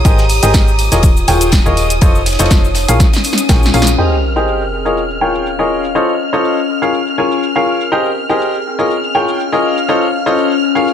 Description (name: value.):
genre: piano house.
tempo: 122 BPM.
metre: 4/4.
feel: swing 53% on 16ths.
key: Ab major.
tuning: A4 = 440 Hz.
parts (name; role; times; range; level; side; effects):
string machine, violins; sustained chords; 0.0-10.9 s; Eb6 to F6; -22 LUFS; equal; ensemble chorus, sidechain pumping.
bright upright piano; riff; 0.0-10.9 s; F4 to Ab5; -15 LUFS; left 1 dB; sidechain pumping, low-pass filter, dub echo.
solid FM bass; bass; 0.0-4.0 s; Eb1 to Bb1; -15 LUFS; equal; tube saturation, sidechain pumping.
electronic kick drum; drums; 0.0-3.6 s; none; -11 LUFS; equal; overdrive.
tight metal drum kit; drums; 0.0-3.9 s; hi-hat, ride cymbal, snare drum; -27 LUFS; left 2 dB; high-pass filter on cymbals, high-pass filter on hats, high-pass filter on snare, high-pass filter on room.
warbly tape-like pad; texture; 0.0-10.9 s; C4 to Bb5; -20 LUFS; left 4 dB; chorus, built-in reverb, sidechain pumping.
punchy analog drum machine; drums; 0.1-10.9 s; hi-hat, shaker, snare drum; -19 LUFS; equal; overdrive, low-pass filter on hats, low-pass filter on perc, low-pass filter on snare, low-pass filter on room.
tambourine; percussion; 0.1-4.0 s; none; -29 LUFS; left 3 dB; none.
sub drop; sound effects; 4.0-6.0 s; none; -20 LUFS; equal; none.
room: light reverb, small room ambience.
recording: none.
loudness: -11 LUFS.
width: side -9 dB against mid.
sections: 0.0-4.0 A section; 4.0-10.9 B section.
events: drum fill 3.0-4.0; band accent 3.8; impact 4.0-6.0; filter sweep on upright piano 4.0-10.9.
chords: 0.0 Abmaj9; 0.8 Eb9sus4; 2.0 F7b13; 2.8 Bbm7; 4.0 Abmaj9; 4.7 Eb9sus4; 6.0 F7b13; 6.7 Bbm7; 7.9 Abmaj9; 8.7 Eb9sus4; 9.9 F7b13.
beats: | 0.05 0.54 1.03 1.52 | 2.02 2.51 3.00 3.49 | 3.98 4.47 4.97 5.46 | 5.95 6.44 6.93 7.43 | 7.92 8.41 8.90 9.39 | 9.88 10.38 10.87.